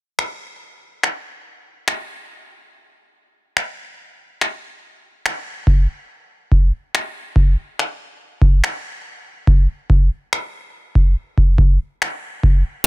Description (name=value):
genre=R&B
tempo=71 BPM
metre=4/4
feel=straight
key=none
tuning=none
part: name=booming analog drum machine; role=drums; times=0.2-12.6 s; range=finger snaps, kick drum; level=-15 LUFS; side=equal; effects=overdrive, soft clipping on snare
room=little or no reverb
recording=dense, heavily limited modern master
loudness=-16 LUFS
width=side -20 dB against mid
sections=0.0-12.9 A section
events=none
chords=none